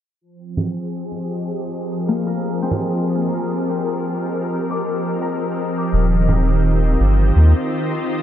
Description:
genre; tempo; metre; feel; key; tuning
ambient dub; 84 BPM; 4/4; swing 58% on 16ths; F dorian; A4 = 440 Hz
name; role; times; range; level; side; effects
soft additive organ-like pad; sustained chords; 0.2-8.2 s; Eb3 to Eb5; -21 LUFS; equal; ensemble chorus, built-in reverb
congas; drums; 0.6-6.5 s; none; -24 LUFS; right 2 dB; dub echo
Celtic harp; arpeggios; 2.1-7.6 s; Bb3 to D6; -27 LUFS; left 3 dB; low-pass filter, tape echo
soft dub sub bass; bass; 5.9-7.5 s; Eb1 to Eb2; -14 LUFS; equal; none
room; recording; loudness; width
digital ambience; dark, warm production, low-pass filter; -17 LUFS; side -11 dB against mid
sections
0.2-8.2 A section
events
filter sweep on harp 0.2-8.2; filter sweep 0.2-8.2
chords
0.2 Fm11; 5.9 Eb6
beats
| 0.21 0.93 1.64 2.36 | 3.07 3.79 4.50 5.21 | 5.93 6.64 7.36 8.07

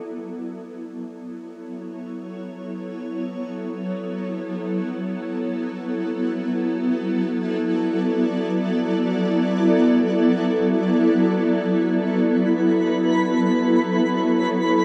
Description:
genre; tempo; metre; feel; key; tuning
ambient; free time; none; none; unclear; A4 = 440 Hz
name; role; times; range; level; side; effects
granular cloud pad; sustained chords; 0.0-14.8 s; F#3 to D5; -22 LUFS; equal; built-in reverb
twinkling granular texture; texture; 12.5-14.8 s; B4 to B5; -28 LUFS; equal; built-in reverb
room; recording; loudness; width
wet huge ambient reverb, RT60 7.9 s; worn, warbling old tape, cassette tape, warbly pitch drift; -22 LUFS; mono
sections
0.0-12.2 A section; 12.2-14.8 B section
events
fade-in on ambient pad 0.0-12.2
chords
0.0 A6; 5.8 Esus2; 12.2 A6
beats
free time

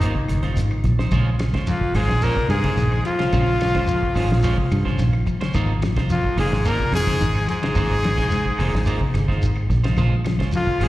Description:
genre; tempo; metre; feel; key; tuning
afrobeat; 108 BPM; 4/4; straight; Bb dorian; A4 = 443 Hz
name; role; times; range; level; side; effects
clear trumpet; melody; 0.0-10.9 s; Eb4 to Bb4; -24 LUFS; left 2 dB; slapback echo
clear baritone saxophone; second line; 0.0-10.9 s; Eb2 to Bb2; -32 LUFS; right 2 dB; slapback echo
raspy alto saxophone; second line; 0.0-10.9 s; Eb3 to Bb3; -35 LUFS; right 2 dB; none
semi-hollow electric guitar; stabs; 0.0-10.9 s; Ab3 to C5; -30 LUFS; right 5 dB; spring reverb, slapback echo
fingered electric bass; bass; 0.0-10.9 s; F1 to G2; -21 LUFS; equal; none
cloth-damped thuddy drum kit; drums; 0.0-10.9 s; hi-hat, kick drum, ride cymbal, snare drum; -26 LUFS; equal; none
shekere; percussion; 0.0-10.9 s; none; -26 LUFS; right 1 dB; none
mellow electric guitar; arpeggios; 0.2-10.9 s; C3 to Ab3; -27 LUFS; left 4 dB; none
claves; percussion; 0.3-10.9 s; none; -42 LUFS; left 1 dB; none
room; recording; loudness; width
light reverb; live gig heard through the venue's PA, recital hall reverb; -18 LUFS; side -16 dB against mid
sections
0.0-1.1 A section; 1.1-10.9 A section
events
none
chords
0.0 Ab69; 1.1 Bbm9; 5.5 Ab69; 10.0 Bbm9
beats
0.01 0.57 | 1.12 1.67 2.23 2.78 | 3.33 3.89 4.44 5.00 | 5.55 6.10 6.66 7.21 | 7.76 8.31 8.87 9.42 | 9.97 10.53

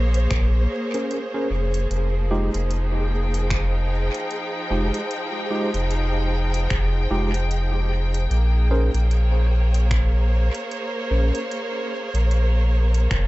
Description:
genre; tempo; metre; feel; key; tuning
ambient dub; 75 BPM; 4/4; swing 59% on 16ths; F minor; A4 = 441 Hz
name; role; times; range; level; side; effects
clear studio string section; sustained chords; 0.0-13.3 s; F3 to G5; -27 LUFS; equal; none
warm sub bass; bass; 0.0-13.3 s; F1 to Bb1; -20 LUFS; equal; tube saturation
organic electronic drum kit; drums; 0.1-13.3 s; finger snaps, hi-hat; -33 LUFS; right 1 dB; overdrive, dub echo
electronic kick drum; drums; 0.3-13.3 s; none; -26 LUFS; equal; overdrive
tine electric piano; stabs; 0.9-11.4 s; Ab3 to C5; -29 LUFS; right 1 dB; medium tremolo, dub echo
room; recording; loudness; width
little or no reverb; echo-heavy mix, nothing above 8.0 kHz; -20 LUFS; side -19 dB against mid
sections
0.0-13.3 A section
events
none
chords
0.0 Bbm9; 1.9 Fm9; 8.3 Bbm9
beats
0.31 1.11 | 1.91 2.71 3.51 4.31 | 5.11 5.91 6.71 7.51 | 8.31 9.11 9.91 10.71 | 11.51 12.31 13.11

